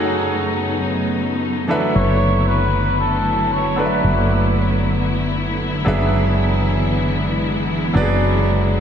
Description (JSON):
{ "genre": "amapiano", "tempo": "115 BPM", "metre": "4/4", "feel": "swing 58% on 16ths", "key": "unclear", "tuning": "A4 = 441 Hz", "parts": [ { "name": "bright grand piano", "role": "accompaniment", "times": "0.0-8.8 s", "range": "E3 to F#5", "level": "-22 LUFS", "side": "right 2 dB", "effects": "none" }, { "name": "muted studio string section", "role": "sustained chords", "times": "0.0-8.8 s", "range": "F#2 to E4", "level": "-21 LUFS", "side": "left 1 dB", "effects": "none" }, { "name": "trumpet with cup mute", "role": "melody", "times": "2.0-4.3 s", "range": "A4 to C#5", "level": "-22 LUFS", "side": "left 1 dB", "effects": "ping-pong delay" }, { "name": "woody fretless electric bass", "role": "bass", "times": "2.0-8.8 s", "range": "F#1", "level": "-19 LUFS", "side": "equal", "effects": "none" } ], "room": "wet lush hall reverb, RT60 2.9 s", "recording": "dreamy mix soaked in reverb", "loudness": "-16 LUFS", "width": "side -8 dB against mid", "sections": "0.0-8.8 A section", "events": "none", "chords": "0.0 B13/F#; 1.7 D69/F#; 5.9 E7/F#" }